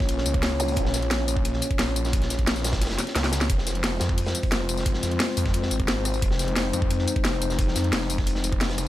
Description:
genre	dark technical drum and bass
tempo	176 BPM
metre	4/4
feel	straight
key	F minor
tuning	A4 = 439 Hz
part	dark analog pad	sustained chords	0.0-8.9 s	Ab3 to Db5	-29 LUFS	left 3 dB	chorus, sidechain pumping
part	snarling distorted saw bass	bass	0.0-8.9 s	F1 to F2	-27 LUFS	equal	distortion, overdrive
part	crunchy breakbeat drum kit	drums	0.0-8.9 s	hi-hat, snare drum	-34 LUFS	equal	high-pass filter on hats, small room reverb, high-pass filter on snare, high-pass filter on room
part	electronic kick drum	drums	0.0-8.6 s	none	-26 LUFS	equal	small room reverb
part	drum and bass drum kit	drums	0.1-8.8 s	hi-hat, rim click, snare drum, tambourine	-27 LUFS	left 1 dB	overdrive, small room reverb
part	zap	sound effects	0.6-0.7 s	none	-33 LUFS	equal	none
room	light reverb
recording	none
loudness	-22 LUFS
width	side -14 dB against mid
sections	0.0-8.9 A section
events	kick drops out 2.8-3.5; drum fill 3.0-3.5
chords	0.0 Bbm; 3.5 Fm

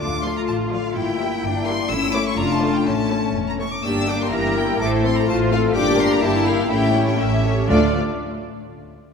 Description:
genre	quick classical-period movement for symphony orchestra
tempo	125 BPM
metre	2/4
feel	rubato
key	D minor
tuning	A4 = 441 Hz
part	rich chamber violin section	melody	0.0-8.0 s	D5 to E6	-26 LUFS	left 4 dB	none
part	warm French horn section	sustained chords	0.0-7.9 s	A3 to F4	-22 LUFS	left 5 dB	none
part	rich chamber double bass section	bass	0.0-8.0 s	E1 to D2	-25 LUFS	right 4 dB	none
part	warm studio cello section	bass	0.0-8.0 s	D2 to Bb4	-26 LUFS	right 2 dB	none
part	warm symphonic violin section	second line	0.2-8.0 s	G4 to Bb5	-28 LUFS	left 4 dB	none
part	rich chamber viola section	accompaniment	0.2-8.0 s	E3 to Bb4	-28 LUFS	right 1 dB	none
room	wet concert hall reverb, RT60 2.5 s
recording	none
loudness	-17 LUFS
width	side -6 dB against mid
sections	0.0-7.7 A section; 7.7-8.7 B section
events	none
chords	0.0 Dm; 1.0 Edim/G; 1.9 A7/G; 2.4 Dm/F; 2.9 A; 3.8 Gm; 4.3 Edim/G; 4.8 Am; 5.3 F/A; 5.8 Gm; 6.2 Edim/G; 6.7 A7; 7.7 Dm

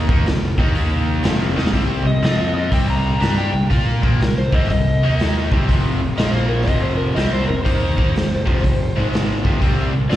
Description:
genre	blues rock power trio and southern rock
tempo	122 BPM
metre	4/4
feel	swing 65% on 8ths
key	unclear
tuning	A4 = 443 Hz
part	crunchy overdriven guitar	riff	0.0-10.2 s	F2 to Bb4	-22 LUFS	equal	slapback echo
part	fuzz picked electric bass	bass	0.0-10.2 s	F1 to Bb2	-20 LUFS	equal	overdrive
part	raw garage drum kit	drums	0.1-10.2 s	hi-hat, kick drum, snare drum	-20 LUFS	equal	none
part	overdriven slide guitar	melody	2.1-10.2 s	Bb4 to Bb5	-25 LUFS	left 2 dB	slapback echo, digital delay
room	studio reverb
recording	live gig heard through the venue's PA, recital hall reverb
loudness	-16 LUFS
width	side -13 dB against mid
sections	0.0-1.7 A section; 1.7-10.2 B section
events	drum fill 1.5; electric slide guitar solo 1.7-10.2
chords	0.0 F5; 0.5 Eb5; 1.2 F5; 1.7 C5; 2.2 F5; 2.7 C5; 4.9 Eb5; 5.4 C5; 5.7 F5; 6.2 Bb5; 6.7 F5; 8.9 Ab5; 9.4 F5; 9.6 C5

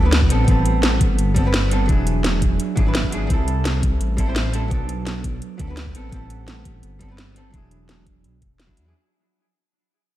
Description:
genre	liquid drum and bass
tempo	170 BPM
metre	4/4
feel	straight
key	unclear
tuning	A4 = 440 Hz
part	vintage hollow-body jazz guitar	accompaniment	0.0-8.9 s	F#3 to C5	-25 LUFS	right 2 dB	vintage 12-bit sampler grit, diffuse ambient delay
part	dark detuned saw bass	bass	0.0-8.9 s	E1 to E2	-21 LUFS	equal	none
part	garage drum kit	drums	0.1-8.8 s	hi-hat, snare drum	-24 LUFS	equal	studio reverb
part	electronic kick drum	drums	0.2-8.8 s	none	-20 LUFS	equal	studio reverb
room	light reverb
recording	none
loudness	-17 LUFS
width	side -14 dB against mid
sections	0.0-8.9 A section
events	fade-out 0.0-8.9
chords	0.3 Am9; 1.9 E9; 3.3 C6; 4.7 Bm7; 5.9 Am9; 7.5 E9

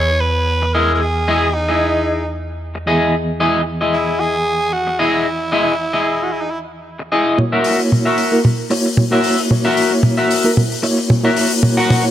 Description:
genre	nu-disco, nu disco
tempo	113 BPM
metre	4/4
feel	swing 54% on 16ths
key	F# mixolydian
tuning	A4 = 439 Hz
part	growling tenor saxophone	melody	0.0-6.6 s	D#4 to C#5	-19 LUFS	right 1 dB	dub echo
part	reed electric piano	accompaniment	0.0-12.1 s	E3 to D#5	-20 LUFS	equal	tremolo, tape echo
part	clean electric guitar	riff	0.0-12.0 s	E4 to F#5	-18 LUFS	left 1 dB	lush chorus, low-pass filter
part	fingered electric bass with an envelope filter	bass	0.0-7.1 s	E2	-24 LUFS	equal	none
part	damped 70s drum kit	drums	7.4-12.0 s	hi-hat, toms	-17 LUFS	equal	low-pass filter on toms, low-pass filter on hats, low-pass filter on snare, low-pass filter on room
room	light reverb, studio reverb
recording	none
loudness	-14 LUFS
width	side -11 dB against mid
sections	0.0-7.4 A section; 7.4-12.1 B section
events	build-up 7.4-12.1; drum fill 7.4-12.1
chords	0.0 Emaj7; 7.4 F#7

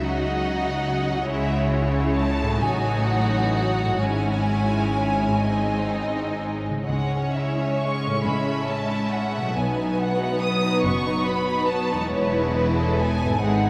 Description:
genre	classical, slow romantic movement for symphony orchestra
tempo	41-48 BPM (dotted quarters)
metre	6/8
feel	rubato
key	C# minor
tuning	A4 = 441 Hz
part	warm symphonic violin section	melody	0.0-13.7 s	B4 to D#6	-30 LUFS	equal	none
part	warm symphonic violin section	second line	0.0-13.7 s	G#3 to F#5	-30 LUFS	equal	none
part	rich symphonic viola section	accompaniment	0.0-13.7 s	F#3 to F#4	-30 LUFS	equal	none
part	concert harp	arpeggios	0.0-13.7 s	E2 to C#5	-31 LUFS	equal	none
part	clear symphonic cello section	bass	0.0-13.7 s	E2 to C#3	-31 LUFS	equal	none
part	clear symphonic double bass section	bass	0.0-13.7 s	E1 to C#2	-31 LUFS	equal	none
room	wet huge ambient reverb, RT60 7.1 s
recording	in a vast, echoing space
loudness	-23 LUFS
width	mono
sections	0.0-13.7 A section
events	none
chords	0.0 G#7/C#; 1.3 C#m; 2.6 F#m/A; 4.0 C#m/G#; 5.5 G#; 6.9 C#m; 8.2 Amaj7; 9.5 B; 12.1 E

